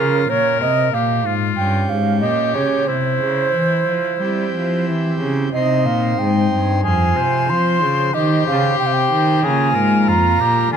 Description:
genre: classical, baroque-style sonata movement with continuo.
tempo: 92 BPM.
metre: 4/4.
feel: straight.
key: unclear.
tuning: A4 = 440 Hz.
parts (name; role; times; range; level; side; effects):
clear oboe; melody; 0.0-10.8 s; E4 to C5; -23 LUFS; left 10 dB; none.
baroque flute; second line; 0.0-10.8 s; Bb4 to C6; -19 LUFS; right 5 dB; none.
pipe organ, principal chorus; accompaniment; 0.0-10.8 s; F2 to C5; -22 LUFS; left 2 dB; none.
rich cello; bass; 0.0-10.8 s; F2 to G3; -20 LUFS; equal; none.
room: moderate recital hall reverb, RT60 1.7 s.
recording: close, detailed microphones.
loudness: -15 LUFS.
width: side -7 dB against mid.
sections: 0.0-10.8 A section.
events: none.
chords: 0.3 Gdim; 2.9 C; 5.5 Cm; 6.8 Fm; 8.1 Cm; 9.4 Bbm7.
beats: | 0.29 0.93 1.57 2.22 | 2.88 3.54 4.20 4.87 | 5.53 6.19 6.84 7.49 | 8.14 8.79 9.44 10.08 | 10.72.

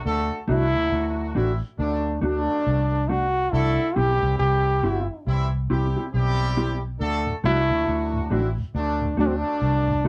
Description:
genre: reggae.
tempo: 69 BPM.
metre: 4/4.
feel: swing 60% on 16ths.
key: unclear.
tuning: A4 = 442 Hz.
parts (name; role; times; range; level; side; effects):
warm horn section; second line; 0.0-10.0 s; D3 to A4; -32 LUFS; equal; none.
vintage muted fingered electric bass; bass; 0.1-10.1 s; G1 to D2; -27 LUFS; equal; none.
clear trombone; melody; 0.5-10.1 s; C4 to G4; -26 LUFS; equal; none.
mellow electric guitar; accompaniment; 0.5-10.1 s; A3 to G4; -28 LUFS; equal; none.
mellow tonewheel organ; accompaniment; 7.3-10.1 s; D2 to D4; -32 LUFS; equal; chorus vibrato, slow rotary speaker.
room: moderate studio reverb, RT60 0.5 s.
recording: band playing live in one room.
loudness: -23 LUFS.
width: mono.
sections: 0.0-10.1 A section.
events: none.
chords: 0.0 D; 3.5 C; 7.0 D.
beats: | 0.04 0.91 1.78 2.65 | 3.52 4.39 5.26 6.13 | 7.00 7.87 8.74 9.61.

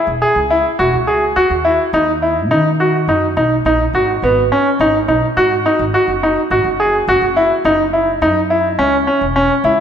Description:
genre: contemporary instrumental, chamber music in an uneven meter.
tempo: 105 BPM.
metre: 5/4.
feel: straight.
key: G# minor.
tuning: A4 = 440 Hz.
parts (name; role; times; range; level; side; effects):
bright grand piano; arpeggios; 0.0-9.8 s; B3 to G#4; -12 LUFS; equal; none.
upright bass; bass; 0.1-9.8 s; E1 to D#3; -22 LUFS; equal; none.
room: wet concert hall reverb, RT60 2.0 s.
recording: minimal, uncompressed stereo recording.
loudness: -12 LUFS.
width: side -8 dB against mid.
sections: 0.0-9.8 A section.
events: none.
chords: 0.0 E6; 1.4 B/D# (rootless); 4.2 G#7(no3); 7.1 F#5.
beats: 0.22 0.79 | 1.36 1.94 2.51 3.08 3.65 | 4.23 4.80 5.37 5.94 6.51 | 7.08 7.65 8.22 8.79 9.36.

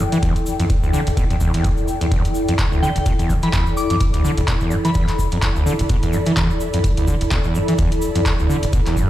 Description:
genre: acid house.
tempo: 127 BPM.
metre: 4/4.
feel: swing 56% on 16ths.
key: E minor.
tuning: A4 = 436 Hz.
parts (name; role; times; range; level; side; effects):
overdriven acid bass; riff; 0.0-9.1 s; E1 to E3; -20 LUFS; equal; distortion, tube saturation, wide subtle chorus, sidechain pumping, ping-pong delay.
ethereal airy pad; texture; 0.0-9.1 s; E4 to B5; -24 LUFS; equal; ensemble chorus, built-in reverb, sidechain pumping.
booming analog drum machine; drums; 0.1-8.9 s; handclaps, hi-hat; -27 LUFS; equal; none.
tube shaker; percussion; 0.1-9.1 s; none; -38 LUFS; left 1 dB; none.
electronic kick drum; drums; 0.2-9.1 s; none; -20 LUFS; equal; none.
soft synth bell; melody; 2.8-5.5 s; G5 to D6; -27 LUFS; left 1 dB; chorus, ping-pong delay.
room: light reverb.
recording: played on a big sound system in a bare room, large studio reverb.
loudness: -16 LUFS.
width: side -14 dB against mid.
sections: 0.0-9.1 A section.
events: none.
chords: 0.0 Em7.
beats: | 0.23 0.70 1.17 1.64 | 2.12 2.59 3.06 3.53 | 4.01 4.48 4.95 5.42 | 5.90 6.37 6.84 7.31 | 7.79 8.26 8.73.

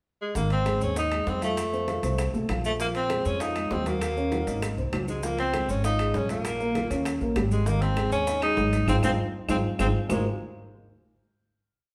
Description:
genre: Afro-Cuban jazz.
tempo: 197 BPM.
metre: 4/4.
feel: straight.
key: Ab major.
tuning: A4 = 439 Hz.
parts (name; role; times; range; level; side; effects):
clear tenor saxophone; melody; 0.2-10.2 s; Ab3 to Eb4; -31 LUFS; equal; none.
dark upright piano; accompaniment; 0.4-10.2 s; Eb3 to Gb5; -33 LUFS; equal; none.
upright bass; bass; 0.4-10.2 s; Ab1 to F2; -31 LUFS; equal; none.
bongos; percussion; 0.4-10.2 s; none; -41 LUFS; equal; none.
congas; percussion; 0.4-10.2 s; none; -40 LUFS; equal; none.
maracas; percussion; 0.4-10.2 s; none; -47 LUFS; equal; none.
timbales; percussion; 0.5-10.2 s; none; -40 LUFS; equal; none.
claves; percussion; 0.7-10.2 s; none; -43 LUFS; equal; none.
room: wet large studio reverb, RT60 1.2 s.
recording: band playing live in one room.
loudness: -26 LUFS.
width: mono.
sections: 0.0-0.4 pickup bar; 0.4-10.1 A section; 10.1-11.3 final chord.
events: drum fill 4.3-5.2, 8.9-10.1; band accent 8.9-10.1.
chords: 0.4 Ab6; 1.6 F; 2.8 Bb9sus4; 4.0 Ebm7; 4.6 Ab7; 5.2 Dbmaj7; 6.4 Bbm; 7.1 Eb7; 7.7 Ab6; 10.1 Ab69.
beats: 0.05 | 0.35 0.66 0.96 1.27 | 1.57 1.88 2.19 2.49 | 2.79 3.10 3.40 3.71 | 4.01 4.32 4.62 4.93 | 5.23 5.53 5.84 6.14 | 6.45 6.75 7.05 7.36 | 7.66 7.96 8.27 8.57 | 8.88 9.18 9.49 9.79 | 10.10.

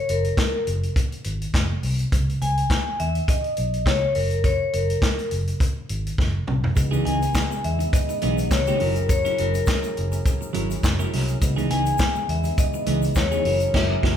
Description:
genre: disco.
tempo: 103 BPM.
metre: 4/4.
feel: swing 56% on 16ths.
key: unclear.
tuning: A4 = 436 Hz.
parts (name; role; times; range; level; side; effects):
vibraphone with medium hard mallets; melody; 0.0-14.2 s; A#4 to G#5; -25 LUFS; left 3 dB; none.
vintage muted fingered electric bass; bass; 0.1-14.2 s; F#1 to E2; -25 LUFS; equal; none.
vintage drum kit; drums; 0.1-14.2 s; crash cymbal, handclaps, hi-hat, kick drum, snare drum, toms; -24 LUFS; equal; none.
clean electric guitar; accompaniment; 6.8-14.2 s; E3 to A#4; -28 LUFS; right 3 dB; none.
mellow tonewheel organ; sustained chords; 6.8-14.2 s; C#3 to A#4; -33 LUFS; equal; overdrive, chorus vibrato, slow rotary speaker.
tube shaker; percussion; 6.8-13.7 s; none; -40 LUFS; left 5 dB; none.
room: wet large studio reverb, RT60 1.3 s.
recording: band playing live in one room.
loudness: -20 LUFS.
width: side -9 dB against mid.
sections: 0.0-14.2 A section.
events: drum fill 6.2-6.8; band accent 13.7-14.2.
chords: 0.0 F#; 2.1 C#m9; 4.2 F#; 6.8 C#m9; 8.8 F#7; 11.4 C#m9; 13.5 F#7.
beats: 0.38 0.96 1.54 | 2.12 2.70 3.28 3.86 | 4.44 5.02 5.60 6.18 | 6.77 7.35 7.93 8.51 | 9.09 9.67 10.25 10.84 | 11.42 12.00 12.58 13.16 | 13.74.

